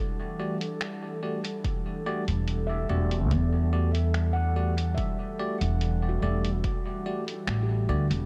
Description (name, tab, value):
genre	ambient dub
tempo	72 BPM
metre	4/4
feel	straight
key	E minor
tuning	A4 = 440 Hz
part	airy breathy pad	sustained chords	0.0-8.3 s	E3 to F#5	-37 LUFS	equal	chorus, phaser
part	handpan	arpeggios	0.0-8.3 s	G3 to F#5	-40 LUFS	equal	low-pass filter, tape echo
part	bell-like tine electric piano	stabs	0.4-8.1 s	A3 to D5	-38 LUFS	equal	low-pass filter, dub echo
part	lo-fi sampler-style drum kit	drums	0.6-8.3 s	finger snaps, hi-hat	-40 LUFS	equal	studio reverb, dub echo
part	electronic kick drum	drums	1.6-6.8 s	none	-34 LUFS	equal	overdrive, studio reverb
part	upright bass	bass	2.3-8.3 s	E1 to E2	-27 LUFS	equal	none
room	light reverb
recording	dark, warm production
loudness	-28 LUFS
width	mono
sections	0.0-8.3 A section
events	filter sweep on handpan 0.0-8.3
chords	0.0 Em11